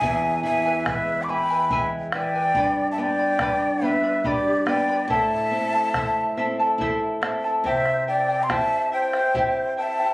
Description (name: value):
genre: andean folk, Andean ensemble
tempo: 71 BPM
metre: 3/4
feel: straight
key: unclear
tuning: A4 = 440 Hz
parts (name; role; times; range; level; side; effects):
- breathy mellow quena; melody; 0.0-10.1 s; D5 to D6; -23 LUFS; equal; none
- breathy bright large quena; second line; 0.0-10.1 s; G4 to B5; -27 LUFS; equal; tape echo
- charango; accompaniment; 0.0-10.1 s; E4 to B5; -27 LUFS; equal; none
- flamenco guitar; accompaniment; 0.0-10.0 s; E2 to G4; -28 LUFS; equal; none
- bombo; percussion; 0.0-10.1 s; none; -30 LUFS; equal; none
room: moderate small room reverb, RT60 0.5 s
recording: recorded on a phone in the room, club reverb, compression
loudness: -20 LUFS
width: side -20 dB against mid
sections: 0.0-7.7 A section; 7.7-10.1 B section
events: none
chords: 0.0 E; 2.6 G; 5.1 Am; 7.7 C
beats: | 0.01 0.86 1.71 | 2.56 3.40 4.25 | 5.10 5.95 6.80 | 7.65 8.50 9.35